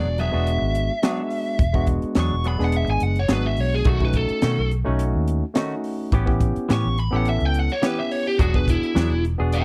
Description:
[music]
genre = straight-eighth soul blues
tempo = 106 BPM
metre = 4/4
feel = straight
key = E mixolydian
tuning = A4 = 440 Hz
[part]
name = biting lead guitar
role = melody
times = 0.0-9.6 s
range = E4 to C#6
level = -28 LUFS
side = equal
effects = overdrive, slapback echo
[part]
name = barky tine electric piano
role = accompaniment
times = 0.0-9.6 s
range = G#3 to A4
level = -29 LUFS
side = equal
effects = none
[part]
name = semi-hollow electric guitar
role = stabs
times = 0.0-9.6 s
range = D#3 to G#4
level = -32 LUFS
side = equal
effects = spring reverb
[part]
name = vintage muted fingered electric bass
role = bass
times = 0.0-9.6 s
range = E1 to B2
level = -25 LUFS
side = equal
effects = none
[part]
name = tight funk drum kit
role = drums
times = 0.2-9.6 s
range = hi-hat, kick drum, snare drum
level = -24 LUFS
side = equal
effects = none
[sound]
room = small room ambience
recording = dry, close 1970s-style studio recording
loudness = -22 LUFS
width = mono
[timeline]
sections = 0.0-9.6 A section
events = lead electric guitar solo 0.0-9.6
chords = 0.0 E9; 3.9 B9; 6.1 A9; 8.4 E9

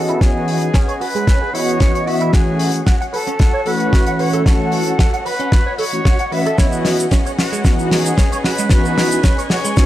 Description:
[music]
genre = nu-disco, nu disco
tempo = 113 BPM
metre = 4/4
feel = swing 54% on 16ths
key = C# minor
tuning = A4 = 437 Hz
[part]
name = jazz flute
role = melody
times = 0.0-9.9 s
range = E4 to E5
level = -23 LUFS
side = equal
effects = tape echo
[part]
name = mellow synth brass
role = accompaniment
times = 0.0-9.9 s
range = E3 to D#5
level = -20 LUFS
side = equal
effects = chorus, sidechain pumping
[part]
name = muted studio violin section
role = sustained chords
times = 0.0-9.9 s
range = C#4 to G#5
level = -26 LUFS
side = left 2 dB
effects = sidechain pumping, low-pass filter
[part]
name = direct-recorded clean electric guitar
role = riff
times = 0.1-9.8 s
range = G#3 to F#5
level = -24 LUFS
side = right 3 dB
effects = ensemble chorus, low-pass filter
[part]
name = damped 70s drum kit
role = drums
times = 0.1-9.9 s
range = hi-hat, shaker, snare drum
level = -22 LUFS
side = left 1 dB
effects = studio ambience
[part]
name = electronic kick drum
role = drums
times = 0.2-9.9 s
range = none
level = -14 LUFS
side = equal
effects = studio ambience
[sound]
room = light reverb, studio reverb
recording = dry, gritty hardware recording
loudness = -13 LUFS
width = side -14 dB against mid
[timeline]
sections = 0.0-9.9 A section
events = build-up 0.0-9.9; drum fill 0.0-9.9; filter sweep on clean electric guitar 0.0-9.9; filter sweep on violin section 0.0-9.9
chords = 0.0 C#m11; 2.3 F#m7; 6.6 C#m11

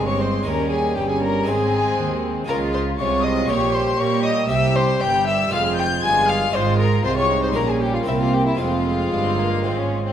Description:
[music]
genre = classical, baroque-style concerto movement with solo episodes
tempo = 118 BPM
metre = 4/4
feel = straight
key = F minor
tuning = A4 = 440 Hz
[part]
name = rich chamber violin section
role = melody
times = 0.0-10.1 s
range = E5 to Ab6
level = -27 LUFS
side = left 4 dB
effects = none
[part]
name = warm violin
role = melody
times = 0.0-10.1 s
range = E4 to Ab5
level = -22 LUFS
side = left 2 dB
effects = none
[part]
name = rich chamber violin section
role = second line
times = 0.0-10.1 s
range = Bb3 to G4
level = -27 LUFS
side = left 3 dB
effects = none
[part]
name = dark chamber viola section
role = accompaniment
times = 0.0-10.1 s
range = G3 to Bb3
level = -27 LUFS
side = right 1 dB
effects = none
[part]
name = harpsichord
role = accompaniment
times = 0.0-10.1 s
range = Eb2 to G4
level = -30 LUFS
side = equal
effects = none
[part]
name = rich chamber double bass section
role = bass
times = 0.0-10.1 s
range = F1 to Bb2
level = -26 LUFS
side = right 4 dB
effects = none
[part]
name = warm chamber cello section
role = bass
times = 0.0-10.1 s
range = Eb2 to Bb3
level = -25 LUFS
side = right 4 dB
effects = none
[sound]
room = wet recital hall reverb, RT60 1.5 s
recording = none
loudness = -17 LUFS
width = side -9 dB against mid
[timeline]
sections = 0.0-10.1 A section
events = none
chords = 0.5 Eb7; 1.5 Ab; 2.5 Db; 3.5 Gdim/Bb; 4.5 C5; 5.5 Fm; 6.5 Fm/Ab; 7.6 Gdim/Bb; 8.1 C5; 8.6 Fm

